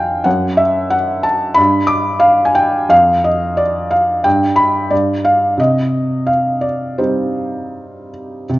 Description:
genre	classical, lyrical solo piano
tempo	89 BPM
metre	4/4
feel	rubato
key	C minor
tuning	A4 = 440 Hz
part	felt-muted upright piano	solo	0.0-8.6 s	F2 to D6	-12 LUFS	equal	none
room	wet recital hall reverb, RT60 1.5 s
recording	worn, warbling old tape, cassette tape, warbly pitch drift, nothing above 7.6 kHz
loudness	-12 LUFS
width	side -17 dB against mid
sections	0.0-8.5 A section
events	none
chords	0.0 N.C.; 5.6 Cm

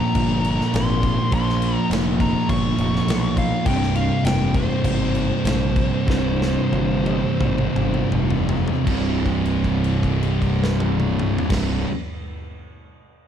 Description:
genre	stoner and doom metal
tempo	77-103 BPM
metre	4/4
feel	straight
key	unclear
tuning	A4 = 440 Hz
part	fuzz lead guitar	melody	0.0-8.1 s	C5 to Db6	-28 LUFS	left 2 dB	distortion, ping-pong delay
part	thick fuzz guitar	riff	0.0-11.9 s	C2 to Bb3	-26 LUFS	left 7 dB	distortion
part	thick fuzz guitar	riff	0.0-11.9 s	C2 to Bb3	-23 LUFS	right 6 dB	distortion
part	thick fuzz guitar	riff	0.0-11.9 s	C2 to Bb3	-27 LUFS	equal	distortion
part	fuzz picked electric bass	bass	0.1-11.8 s	C1 to B1	-25 LUFS	left 1 dB	overdrive, tube saturation
part	big rock drum kit	drums	0.1-11.7 s	crash cymbal, kick drum, snare drum, toms	-26 LUFS	left 1 dB	none
room	studio ambience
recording	dark, warm production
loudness	-18 LUFS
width	side -9 dB against mid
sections	0.0-8.9 A section; 8.9-12.0 B section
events	slowing down 3.7-8.9; drum fill 6.1-8.9; held note 8.9-11.5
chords	0.0 Bbm; 3.7 C5

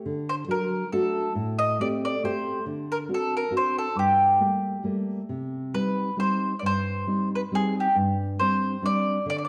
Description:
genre	italian folk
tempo	136 BPM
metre	3/4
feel	swing 54% on 8ths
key	G harmonic minor, C harmonic minor from 5.3 s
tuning	A4 = 441 Hz
part	nylon-string guitar	accompaniment	0.1-9.5 s	G2 to G4	-29 LUFS	equal	none
part	mandolin	melody	0.3-9.5 s	G4 to Eb5	-27 LUFS	equal	none
room	moderate recital hall reverb, RT60 1.4 s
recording	dark, warm production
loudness	-26 LUFS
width	mono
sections	0.0-5.3 A section; 5.3-9.5 B section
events	none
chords	0.0 D; 1.3 Am7; 2.6 D7; 4.0 Gmadd9; 5.3 Cm; 7.9 Gsus4

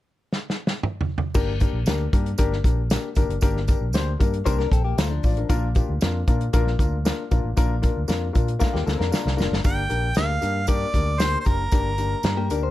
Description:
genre	uptempo 1960s-style soul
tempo	116 BPM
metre	4/4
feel	straight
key	unclear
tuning	A4 = 440 Hz
part	warm soul drum kit	drums	0.3-12.6 s	crash cymbal, hi-hat, kick drum, snare drum, toms	-22 LUFS	equal	none
part	warm baby grand piano	accompaniment	1.3-12.7 s	Bb3 to Bb5	-28 LUFS	left 5 dB	plate reverb
part	tambourine	percussion	1.3-12.6 s	none	-41 LUFS	right 9 dB	none
part	fingered electric bass	bass	1.4-12.7 s	F1 to Bb2	-25 LUFS	equal	none
part	direct-recorded clean electric guitar	riff	4.5-5.5, 8.6-12.7 s	F3 to C5	-29 LUFS	left 8 dB	wide subtle chorus
part	clear harmonica	melody	9.7-12.5 s	Bb4 to G5	-26 LUFS	right 1 dB	none
room	little or no reverb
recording	dark, warm production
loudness	-20 LUFS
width	side -15 dB against mid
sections	0.0-1.3 A section; 1.3-9.6 B section; 9.6-12.7 C section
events	drum fill 0.3-1.3, 8.6-9.6; grand piano fill 4.5-5.5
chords	0.0 N.C.; 1.3 Gm; 5.5 Bb; 9.6 Gm

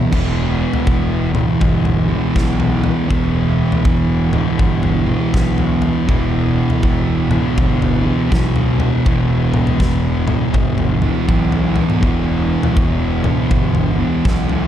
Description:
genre	stoner and doom metal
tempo	81 BPM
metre	4/4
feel	swing 64% on 8ths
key	E minor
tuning	A4 = 439 Hz
part	thick fuzz guitar	riff	0.0-14.7 s	E2 to E3	-20 LUFS	left 8 dB	distortion
part	thick fuzz guitar	riff	0.0-14.7 s	E2 to E3	-19 LUFS	right 7 dB	distortion
part	fuzz picked electric bass	bass	0.1-14.7 s	E1 to B1	-21 LUFS	equal	overdrive
part	big rock drum kit	drums	0.1-14.7 s	crash cymbal, kick drum, snare drum, toms	-19 LUFS	left 1 dB	none
room	light reverb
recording	dark, warm production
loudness	-14 LUFS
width	side -10 dB against mid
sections	0.1-14.7 A section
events	none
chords	0.1 Em

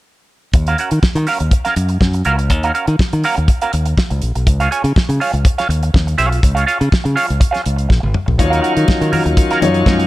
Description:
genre	disco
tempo	122 BPM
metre	4/4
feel	straight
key	Eb minor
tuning	A4 = 440 Hz
part	semi-hollow electric guitar	accompaniment	0.5-10.0 s	Db4 to Ab5	-19 LUFS	right 3 dB	wah
part	modern bright fingered electric bass	bass	0.5-10.1 s	Ab1 to Eb3	-16 LUFS	equal	none
part	damped 70s drum kit	drums	0.5-10.1 s	hi-hat, kick drum, snare drum, toms	-16 LUFS	equal	none
part	clear concert grand piano	accompaniment	8.4-10.1 s	F3 to Db5	-18 LUFS	left 4 dB	none
part	bright tonewheel organ	sustained chords	8.4-10.1 s	Eb3 to F4	-20 LUFS	equal	overdrive, slow rotary speaker
part	congas	percussion	8.4-10.0 s	none	-22 LUFS	left 3 dB	none
room	small room ambience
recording	none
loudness	-13 LUFS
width	side -17 dB against mid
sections	0.5-10.1 A section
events	drum fill 7.9-8.4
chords	0.5 Ebm9; 4.5 Db; 8.4 Ebm9

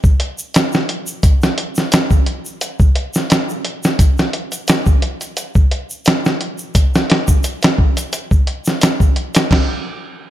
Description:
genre	trip hop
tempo	87 BPM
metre	4/4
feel	swing 54% on 16ths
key	none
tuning	none
part	dusty soul sampler-style drum kit	drums	0.0-9.7 s	crash cymbal, hi-hat, kick drum, snare drum	-13 LUFS	equal	vintage 12-bit sampler grit
part	tube shaker	percussion	0.0-9.5 s	none	-29 LUFS	equal	none
room	little or no reverb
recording	none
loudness	-13 LUFS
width	side -13 dB against mid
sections	0.0-9.5 A section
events	none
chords	none

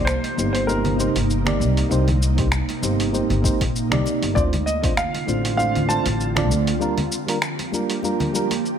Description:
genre	sunset chillout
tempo	98 BPM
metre	4/4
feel	swing 55% on 16ths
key	C dorian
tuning	A4 = 440 Hz
part	warm baby grand piano	melody	0.0-6.5 s	Bb4 to A5	-25 LUFS	right 1 dB	digital delay
part	mellow FM electric piano	accompaniment	0.0-8.5 s	G3 to D5	-25 LUFS	moving between left 2 dB and right 4 dB	chorus, auto-pan, digital delay
part	ethereal airy pad	sustained chords	0.0-8.8 s	C3 to G4	-26 LUFS	right 2 dB	ensemble chorus, built-in reverb
part	upright bass	bass	0.0-6.7 s	G1 to D2	-22 LUFS	equal	tube saturation
part	dusty soul sampler-style drum kit	drums	0.1-8.8 s	finger snaps, hi-hat, shaker	-27 LUFS	equal	overdrive
part	congas	percussion	0.2-8.6 s	none	-30 LUFS	left 2 dB	none
part	electronic kick drum	drums	2.4-4.9 s	none	-23 LUFS	left 1 dB	none
room	light reverb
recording	none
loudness	-18 LUFS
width	side -8 dB against mid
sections	0.0-8.8 A section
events	break 6.8-8.8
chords	0.0 Cm7; 4.4 Dm7; 6.8 Gm7

